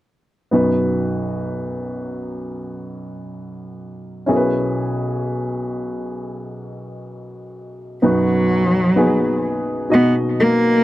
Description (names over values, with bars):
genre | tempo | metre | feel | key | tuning
pop | 64 BPM | 4/4 | straight | B major | A4 = 440 Hz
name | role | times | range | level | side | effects
dark baby grand piano | accompaniment | 0.5-10.8 s | B1 to D#5 | -20 LUFS | equal | none
warm cello | melody | 8.0-10.8 s | F#3 to B3 | -16 LUFS | equal | none
room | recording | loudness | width
light reverb | dry, close 1970s-style studio recording | -17 LUFS | side -16 dB against mid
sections
0.5-8.0 A section; 8.0-10.8 B section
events
none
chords
0.5 B; 4.3 E6/B; 8.0 B